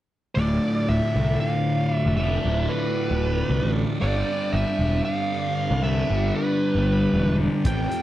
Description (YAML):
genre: psychedelic rock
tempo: 231 BPM (eighths)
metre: 7/8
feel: straight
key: D dorian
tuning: A4 = 440 Hz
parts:
  - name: fuzz lead guitar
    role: melody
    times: 0.3-8.0 s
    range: B4 to G5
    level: -28 LUFS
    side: right 1 dB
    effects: distortion, slapback echo
  - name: combo organ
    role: sustained chords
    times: 0.4-8.0 s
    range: A3 to D5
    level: -36 LUFS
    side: right 2 dB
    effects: none
  - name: thick fuzz guitar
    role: riff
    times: 0.4-8.0 s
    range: D2 to G3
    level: -24 LUFS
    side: equal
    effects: distortion, phaser
  - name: fuzz picked electric bass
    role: bass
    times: 0.4-7.9 s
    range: D1 to C2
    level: -24 LUFS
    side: equal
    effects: overdrive
  - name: cloth-damped thuddy drum kit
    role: drums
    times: 7.7-8.0 s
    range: hi-hat, kick drum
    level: -24 LUFS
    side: equal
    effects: none
room: little or no reverb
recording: dry, close 1970s-style studio recording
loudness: -20 LUFS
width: side -14 dB against mid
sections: 0.4-8.0 A section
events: none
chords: 0.4 Dmadd9; 4.0 Gsus4